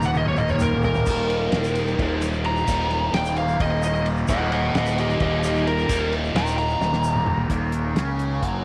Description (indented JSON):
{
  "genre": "psychedelic rock",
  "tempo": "261 BPM (eighths)",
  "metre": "7/8",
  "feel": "straight",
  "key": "Eb mixolydian",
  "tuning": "A4 = 440 Hz",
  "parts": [
    { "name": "overdriven slide guitar", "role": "melody", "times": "0.0-7.5 s", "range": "G4 to Bb5", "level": "-27 LUFS", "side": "equal", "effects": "tape echo" },
    { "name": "clear symphonic string section", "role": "sustained chords", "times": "0.0-8.6 s", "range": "Bb3 to G5", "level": "-38 LUFS", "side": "equal", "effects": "none" },
    { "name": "cranked stack guitar", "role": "riff", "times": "0.0-8.6 s", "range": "Eb2 to Eb4", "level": "-28 LUFS", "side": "equal", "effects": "overdrive, phaser" },
    { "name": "fuzz fingered electric bass", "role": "bass", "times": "0.0-8.6 s", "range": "Eb1 to Db2", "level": "-28 LUFS", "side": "equal", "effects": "overdrive" },
    { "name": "cloth-damped thuddy drum kit", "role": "drums", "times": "0.0-8.5 s", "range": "crash cymbal, hi-hat, kick drum, ride cymbal, snare drum, toms", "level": "-30 LUFS", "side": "equal", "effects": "none" },
    { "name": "tube shaker", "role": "percussion", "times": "0.0-7.1 s", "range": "none", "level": "-45 LUFS", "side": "equal", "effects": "none" }
  ],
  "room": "light reverb, small room reverb",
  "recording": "none",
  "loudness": "-22 LUFS",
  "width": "mono",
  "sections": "0.0-7.5 A section; 7.5-8.6 B section",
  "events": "drum fill 0.0-1.1, 6.8-7.5; electric slide guitar solo 0.0-7.5",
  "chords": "0.0 Eb"
}